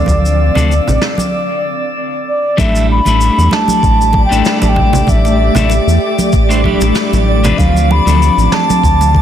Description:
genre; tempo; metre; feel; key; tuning
sunset chillout; 96 BPM; 4/4; swing 54% on 16ths; unclear; A4 = 440 Hz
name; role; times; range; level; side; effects
mellow baroque flute; melody; 0.0-9.2 s; D5 to B5; -16 LUFS; left 1 dB; ping-pong delay
clean electric guitar; accompaniment; 0.0-9.2 s; F3 to C5; -18 LUFS; left 1 dB; auto-pan, tape echo
ethereal airy pad; sustained chords; 0.0-9.2 s; D3 to F5; -20 LUFS; equal; ensemble chorus, built-in reverb
round analog bass; bass; 0.0-9.2 s; A1 to E2; -12 LUFS; equal; none
drifting glass-harmonics texture; texture; 0.0-9.2 s; D5 to E6; -24 LUFS; equal; chorus, built-in reverb
electronic kick drum; drums; 0.1-9.2 s; none; -14 LUFS; equal; none
shaker and snare drum; drums; 0.1-9.1 s; none; -22 LUFS; right 1 dB; none
congas; percussion; 0.1-9.2 s; none; -20 LUFS; right 3 dB; none
room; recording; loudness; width
light reverb, small room reverb; dense, heavily limited modern master; -9 LUFS; side -10 dB against mid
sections
0.0-2.6 A section; 2.6-9.2 B section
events
break 1.3-2.6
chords
0.0 Dm7; 2.6 A7sus4; 7.6 Dm7

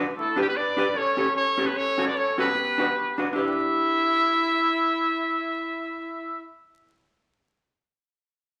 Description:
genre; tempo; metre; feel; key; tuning
ska; 149 BPM; 4/4; swing 58% on 8ths; E dorian; A4 = 439 Hz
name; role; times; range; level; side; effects
vintage hollow-body jazz guitar; accompaniment; 0.0-6.9 s; C#4 to B4; -30 LUFS; equal; none
clear horn section; melody; 0.1-6.4 s; G3 to E5; -26 LUFS; equal; none
room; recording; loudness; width
wet large studio reverb, RT60 1.2 s; band playing live in one room, vinyl crackle; -24 LUFS; mono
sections
0.1-3.3 A section; 3.3-6.6 B section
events
none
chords
0.1 Em7; 0.9 A7; 1.7 Gmaj9#11/C#; 2.5 Gmaj7; 3.3 Em7

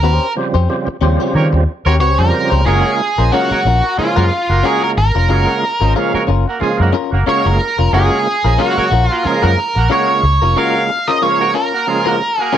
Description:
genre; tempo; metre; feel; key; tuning
funk; 91 BPM; 4/4; swing 56% on 16ths; unclear; A4 = 439 Hz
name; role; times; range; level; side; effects
octave-fuzz lead guitar; melody; 0.0-12.6 s; F4 to F5; -16 LUFS; right 2 dB; distortion
direct-recorded clean electric guitar; accompaniment; 0.0-12.6 s; Db4 to Db5; -20 LUFS; left 11 dB; lush chorus
vintage muted fingered electric bass; bass; 0.0-10.5 s; F1 to Eb3; -14 LUFS; equal; none
overdriven tonewheel organ; stabs; 0.4-12.6 s; Db3 to F4; -20 LUFS; right 3 dB; chorus vibrato, fast rotary speaker, slapback echo
clear horn section; second line; 1.3-12.6 s; Bb3 to F5; -21 LUFS; right 4 dB; none
room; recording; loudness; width
light reverb; none; -12 LUFS; side -10 dB against mid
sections
0.0-2.7 A section; 2.7-12.6 B section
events
band accent 0.0-2.7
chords
0.0 Eb13; 2.7 Gbmaj7

